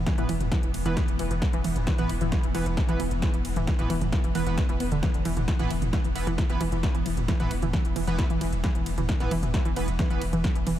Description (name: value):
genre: driving peak-time techno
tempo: 133 BPM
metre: 4/4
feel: straight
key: unclear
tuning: A4 = 440 Hz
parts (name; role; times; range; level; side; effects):
- saturated sub bass; bass; 0.0-10.8 s; E1; -31 LUFS; equal; tube saturation, sidechain pumping, low-pass filter
- swarming drone; drone; 0.0-10.8 s; E3 to B3; -36 LUFS; right 1 dB; built-in reverb, sidechain pumping
- electronic kick drum; drums; 0.1-10.5 s; none; -27 LUFS; equal; none
- techno drum kit; drums; 0.1-10.8 s; hi-hat, ride cymbal, snare drum, toms; -33 LUFS; equal; none
- warbly dusty pluck; riff; 0.2-10.7 s; D3 to B3; -30 LUFS; equal; chorus, sidechain pumping, ping-pong delay
- sync-sweep polysynth; stabs; 0.2-10.2 s; E3 to B4; -35 LUFS; right 4 dB; chorus, sidechain pumping, diffuse ambient delay
room: light reverb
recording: none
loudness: -23 LUFS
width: side -12 dB against mid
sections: 0.0-10.8 A section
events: none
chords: 0.0 E5